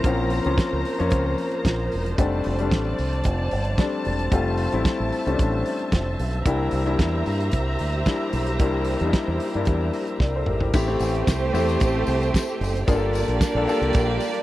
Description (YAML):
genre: disco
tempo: 112 BPM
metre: 4/4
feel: straight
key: F major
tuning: A4 = 440 Hz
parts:
  - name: warm grand piano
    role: accompaniment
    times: 0.0-14.4 s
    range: F3 to D5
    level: -25 LUFS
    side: left 3 dB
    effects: none
  - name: warm symphonic string section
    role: sustained chords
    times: 0.0-14.4 s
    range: F3 to Bb5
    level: -30 LUFS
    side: right 2 dB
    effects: none
  - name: fingered electric bass with an envelope filter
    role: bass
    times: 0.0-14.2 s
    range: E1 to G2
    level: -25 LUFS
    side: right 1 dB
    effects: none
  - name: warm soul drum kit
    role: drums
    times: 0.0-14.4 s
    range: crash cymbal, hi-hat, kick drum, snare drum, toms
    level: -22 LUFS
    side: right 1 dB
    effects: none
  - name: warm studio violin section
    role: second line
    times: 10.7-14.4 s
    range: A3 to D5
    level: -27 LUFS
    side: right 5 dB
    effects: none
  - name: tambourine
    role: percussion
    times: 10.7-14.3 s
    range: none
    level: -40 LUFS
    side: left 11 dB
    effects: none
room: little or no reverb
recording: dry, close 1970s-style studio recording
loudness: -20 LUFS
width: side -15 dB against mid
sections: 0.0-10.7 A section; 10.7-14.4 B section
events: drum fill 10.2-10.7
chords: 0.0 Bbmadd9; 2.2 F6; 6.5 C7; 10.7 Am7; 12.9 Gm7